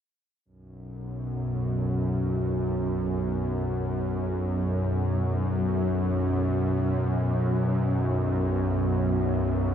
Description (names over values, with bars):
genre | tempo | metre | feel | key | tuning
ambient | free time | none | none | unclear | A4 = 440 Hz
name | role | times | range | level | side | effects
bowed-like drone | solo | 0.8-9.7 s | B1 to F#2 | -24 LUFS | equal | built-in reverb
room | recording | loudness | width
wet huge ambient reverb, RT60 7.8 s | worn, warbling old tape, cassette tape, warbly pitch drift | -24 LUFS | side -9 dB against mid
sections
0.4-9.7 A section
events
none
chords
0.4 B5